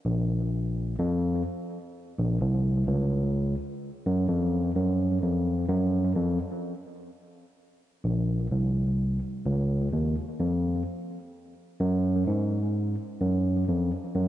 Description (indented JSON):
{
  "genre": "reggae",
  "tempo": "64 BPM",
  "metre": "4/4",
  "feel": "straight",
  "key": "Bb minor",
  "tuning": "A4 = 439 Hz",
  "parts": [
    { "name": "barky tine electric piano", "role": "solo", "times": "0.1-14.3 s", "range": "Bb1 to Ab2", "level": "-25 LUFS", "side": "equal", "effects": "overdrive, tape echo" }
  ],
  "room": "moderate spring reverb, RT60 2.8 s",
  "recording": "nothing above 10.7 kHz",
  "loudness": "-25 LUFS",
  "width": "side -13 dB against mid",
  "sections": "0.0-7.6 A section; 7.6-14.3 B section",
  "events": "none",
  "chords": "none"
}